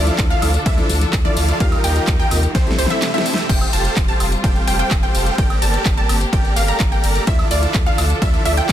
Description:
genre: EDM, festival progressive house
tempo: 127 BPM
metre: 4/4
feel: straight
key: F major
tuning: A4 = 440 Hz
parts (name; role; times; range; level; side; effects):
- felt-muted upright piano; accompaniment; 0.0-3.3 s; C3 to Bb4; -26 LUFS; left 2 dB; sidechain pumping, digital delay
- rich studio string section; sustained chords; 0.0-8.7 s; C3 to Bb4; -26 LUFS; equal; sidechain pumping
- wide unison pluck; arpeggios; 0.0-8.7 s; C5 to Bb5; -24 LUFS; right 1 dB; sidechain pumping, digital delay
- dense compressed supersaw; riff; 0.0-8.7 s; C4 to Bb5; -24 LUFS; right 1 dB; sidechain pumping, digital delay
- saturated sub bass; bass; 0.0-8.7 s; F1 to Eb2; -20 LUFS; equal; sidechain pumping
- big-room dance drum kit; drums; 0.1-8.7 s; crash cymbal, handclaps, hi-hat, ride cymbal, snare drum, tambourine, woodblock; -24 LUFS; left 1 dB; none
- electronic kick drum; drums; 0.2-8.7 s; none; -18 LUFS; equal; overdrive
room: digital ambience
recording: dense, heavily limited modern master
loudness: -14 LUFS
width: side -11 dB against mid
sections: 0.0-3.5 A section; 3.5-8.7 A section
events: drop 0.0-3.5, 3.5-8.7; drum fill 2.5-3.5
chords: 0.0 Dmadd9; 1.6 Ebadd9; 2.5 C6; 3.5 Fadd9; 5.4 Gmadd9; 7.3 Dmadd9

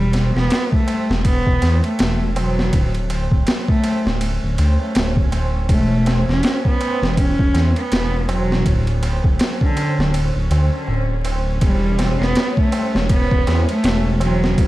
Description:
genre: trip hop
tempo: 81 BPM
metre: 4/4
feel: swing 58% on 16ths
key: E dorian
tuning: A4 = 441 Hz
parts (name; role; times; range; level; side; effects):
- rich cello; melody; 0.0-14.7 s; D3 to C#4; -22 LUFS; equal; vintage 12-bit sampler grit, tape echo
- dark detuned saw bass; bass; 0.0-14.7 s; D1 to E2; -19 LUFS; equal; none
- bowed-like drone; texture; 1.8-14.7 s; C#4; -32 LUFS; equal; built-in reverb, phaser
- boom bap sampler-style drum kit; drums; 0.1-14.7 s; kick drum, ride cymbal, snare drum; -20 LUFS; equal; overdrive
- tabla; percussion; 0.1-14.7 s; none; -30 LUFS; right 4 dB; none
room: digital ambience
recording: dark, warm production, vinyl crackle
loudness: -15 LUFS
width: side -16 dB against mid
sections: 0.0-14.7 A section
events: none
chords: 0.0 E5; 2.7 Dmaj7(no3); 5.7 Aadd9/E (rootless); 8.7 Dmaj7(no3); 11.6 E5

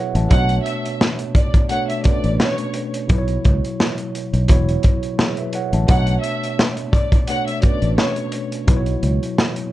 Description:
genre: hip hop, boom-bap hip-hop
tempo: 86 BPM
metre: 4/4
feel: swing 54% on 16ths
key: B minor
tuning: A4 = 440 Hz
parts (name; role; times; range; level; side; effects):
- tine electric piano; accompaniment; 0.0-9.7 s; B2 to A5; -24 LUFS; right 1 dB; medium stereo tremolo, cassette tape, high-pass filter, low-pass filter
- fingered electric bass; bass; 0.1-9.2 s; E1 to C#2; -18 LUFS; equal; none
- crunchy breakbeat drum kit; drums; 0.1-9.7 s; hi-hat, kick drum, snare drum; -17 LUFS; equal; vintage 12-bit sampler grit
- clear studio violin section; melody; 0.3-8.3 s; C#5 to F#5; -26 LUFS; equal; high-pass filter, low-pass filter, tape echo
room: light reverb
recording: dark, warm production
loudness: -16 LUFS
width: side -15 dB against mid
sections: 0.0-9.7 A section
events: none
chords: 0.3 Bm9; 3.1 A69/B (rootless); 5.9 Bm9; 8.7 A69/B (rootless)

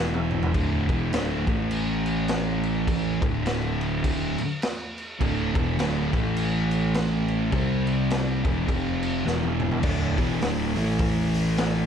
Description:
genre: stoner and doom metal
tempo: 103 BPM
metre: 4/4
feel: swing 59% on 8ths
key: D dorian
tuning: A4 = 441 Hz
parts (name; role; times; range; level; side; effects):
- thick fuzz guitar; riff; 0.0-11.9 s; D2 to C4; -29 LUFS; left 10 dB; distortion
- thick fuzz guitar; riff; 0.0-11.9 s; D2 to C4; -28 LUFS; right 10 dB; distortion
- fuzz picked electric bass; bass; 0.0-11.9 s; D1 to C2; -30 LUFS; equal; overdrive, tube saturation
- raw garage drum kit; drums; 0.1-11.7 s; crash cymbal, hi-hat, kick drum, snare drum, toms; -28 LUFS; equal; none
- thick fuzz guitar; riff; 5.2-11.9 s; D2 to C4; -29 LUFS; equal; distortion
room: light reverb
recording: dark, warm production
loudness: -22 LUFS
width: side -8 dB against mid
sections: 0.5-9.8 A section; 9.8-11.9 B section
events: drum fill 0.0-0.5, 9.3-9.8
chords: 0.0 E5; 0.5 D5; 1.4 A5; 3.2 D5; 6.1 A5; 7.5 C5; 8.4 E5; 8.7 F5; 9.3 E5; 9.8 D5; 10.7 A5

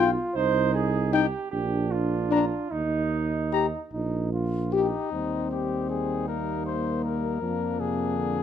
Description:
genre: classical, brass quintet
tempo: 51 BPM (dotted quarters)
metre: 6/8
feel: uneven beats, rubato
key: Eb major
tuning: A4 = 440 Hz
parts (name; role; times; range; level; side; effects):
- dark trumpet; melody; 0.0-8.4 s; Eb4 to Bb5; -30 LUFS; left 10 dB; none
- clear French horn; accompaniment; 0.0-8.4 s; Bb3 to G4; -27 LUFS; left 6 dB; none
- clear trombone; accompaniment; 0.0-8.4 s; C3 to G4; -32 LUFS; right 2 dB; none
- mellow tuba; bass; 0.0-8.4 s; Bb1 to F2; -29 LUFS; right 3 dB; none
- warm flugelhorn; second line; 0.4-8.4 s; D4 to C5; -31 LUFS; right 8 dB; none
room: light reverb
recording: close, detailed microphones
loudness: -24 LUFS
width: side -9 dB against mid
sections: 0.0-5.1 A section; 5.1-8.4 A section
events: none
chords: 0.4 Cm; 1.5 Bb; 2.7 Eb; 7.4 Bb7/F

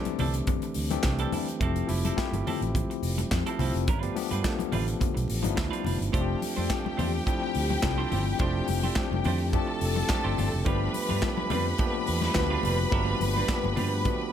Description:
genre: disco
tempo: 106 BPM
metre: 4/4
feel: straight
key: unclear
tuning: A4 = 441 Hz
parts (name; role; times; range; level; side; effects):
- tine electric piano; accompaniment; 0.0-14.3 s; E3 to A4; -31 LUFS; left 3 dB; slow stereo tremolo
- clean electric guitar; accompaniment; 0.1-14.2 s; F3 to C5; -36 LUFS; right 8 dB; none
- modern studio drum kit; drums; 0.1-14.2 s; handclaps, hi-hat, kick drum, snare drum; -31 LUFS; right 1 dB; none
- congas; percussion; 0.1-14.2 s; none; -36 LUFS; left 6 dB; none
- fingered electric bass; bass; 0.2-14.1 s; F1 to G2; -29 LUFS; right 1 dB; none
- warm studio string section; second line; 6.1-14.3 s; G4 to B5; -32 LUFS; equal; none
room: small room ambience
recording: none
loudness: -25 LUFS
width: side -9 dB against mid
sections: 0.0-6.1 A section; 6.1-14.3 B section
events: none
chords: 0.0 C69; 1.6 Fmaj7; 3.9 G7; 6.1 F69; 10.7 G7

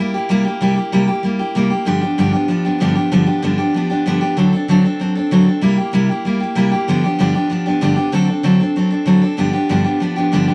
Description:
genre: rock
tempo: 192 BPM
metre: 4/4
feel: straight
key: G mixolydian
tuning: A4 = 439 Hz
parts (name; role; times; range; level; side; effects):
- picked steel-string acoustic guitar; solo; 0.0-10.5 s; G2 to A4; -16 LUFS; equal; none
room: light reverb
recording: vinyl crackle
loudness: -16 LUFS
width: mono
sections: 0.0-9.4 A section; 9.4-10.5 A section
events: none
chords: 0.0 C7; 1.9 G7; 4.4 D7; 5.6 C7; 6.9 G7; 8.1 D7; 9.4 G7

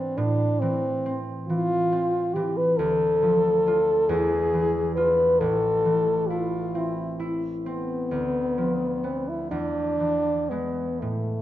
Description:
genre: classical, romantic duo for French horn and harp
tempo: 39-46 BPM (dotted quarters)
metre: 6/8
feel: rubato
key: A minor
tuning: A4 = 444 Hz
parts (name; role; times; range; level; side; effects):
- warm French horn; melody; 0.0-11.4 s; A3 to B4; -23 LUFS; left 1 dB; none
- concert harp; accompaniment; 0.0-11.4 s; A1 to F4; -28 LUFS; right 1 dB; none
room: wet recital hall reverb, RT60 1.5 s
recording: nothing above 7.5 kHz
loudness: -22 LUFS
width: side -13 dB against mid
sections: 0.0-11.4 A section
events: none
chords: 0.2 Am; 2.8 Dm; 4.1 E7b9; 5.4 Am; 8.1 Bdim/D; 9.5 E7

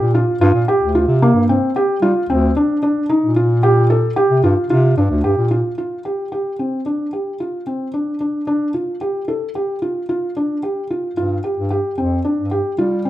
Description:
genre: contemporary instrumental, chamber music in an uneven meter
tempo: 112 BPM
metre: 5/4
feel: straight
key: G minor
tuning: A4 = 442 Hz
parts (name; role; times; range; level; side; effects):
- felt-muted upright piano; arpeggios; 0.0-13.1 s; Bb3 to A4; -17 LUFS; equal; none
- mellow bass clarinet; bass; 0.0-5.6, 11.2-13.1 s; D2 to G3; -17 LUFS; equal; none
room: light reverb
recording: close, detailed microphones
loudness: -15 LUFS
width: side -14 dB against mid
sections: 0.0-5.8 A section; 5.8-13.1 B section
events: none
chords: 0.4 Fsus4; 5.8 G5; 11.2 N.C.

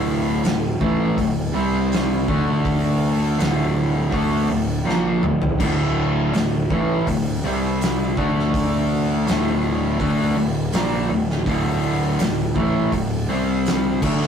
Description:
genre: stoner and doom metal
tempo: 82 BPM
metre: 4/4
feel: straight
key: unclear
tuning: A4 = 440 Hz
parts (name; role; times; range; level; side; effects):
- fuzz guitar; riff; 0.0-14.3 s; D2 to D4; -21 LUFS; equal; distortion
- fuzz picked electric bass; bass; 0.0-14.3 s; D1 to D2; -24 LUFS; equal; overdrive
- oversized low-tuned drum kit; drums; 0.4-14.3 s; crash cymbal, hi-hat, kick drum, snare drum, toms; -25 LUFS; equal; none
room: light reverb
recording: rough rehearsal-room recording, warm saturation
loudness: -18 LUFS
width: side -8 dB against mid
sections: 0.0-14.3 A section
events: drum fill 4.9-5.6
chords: 0.0 D5; 1.5 C5; 2.3 D5; 7.4 C5; 8.2 D5; 13.3 C5

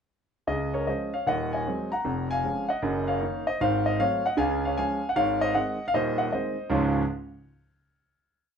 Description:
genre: jazz, stride piano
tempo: 154 BPM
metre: 4/4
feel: swing 65% on 8ths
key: Db major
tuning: A4 = 440 Hz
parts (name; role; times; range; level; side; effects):
- clear concert grand piano; solo; 0.5-7.0 s; Eb1 to Bb5; -24 LUFS; equal; none
room: moderate club reverb, RT60 0.8 s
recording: nothing above 10.9 kHz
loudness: -24 LUFS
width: side -7 dB against mid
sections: 0.5-6.7 A section; 6.7-8.3 final chord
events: none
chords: 0.5 Db; 1.3 Ab7/Eb; 2.0 Db/F; 2.8 Ebm/Gb; 3.6 Ab7b9; 4.4 Db; 5.2 Ab; 6.7 Db

